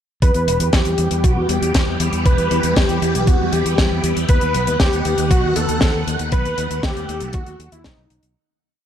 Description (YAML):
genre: italo disco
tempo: 118 BPM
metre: 4/4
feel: straight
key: E harmonic minor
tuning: A4 = 440 Hz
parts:
  - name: wide unison lead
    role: melody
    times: 0.2-8.2 s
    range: D#4 to B4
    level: -22 LUFS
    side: equal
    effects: cassette tape, digital delay
  - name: phased string machine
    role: sustained chords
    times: 0.4-8.3 s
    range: D#3 to F#5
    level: -24 LUFS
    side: equal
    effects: ensemble chorus, phaser
  - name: fingered electric bass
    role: bass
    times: 0.2-8.3 s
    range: E1 to E2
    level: -22 LUFS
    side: equal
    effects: tube saturation
  - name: electronic kick drum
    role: drums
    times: 0.2-8.0 s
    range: none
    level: -16 LUFS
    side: equal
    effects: none
  - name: tight funk drum kit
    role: drums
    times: 0.2-8.3 s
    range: hi-hat, snare drum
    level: -23 LUFS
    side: left 2 dB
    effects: none
room: light reverb, small room ambience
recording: dark, warm production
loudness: -15 LUFS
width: side -9 dB against mid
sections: 0.2-8.4 verse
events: fade-out 5.6-8.4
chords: 0.2 Em; 4.3 B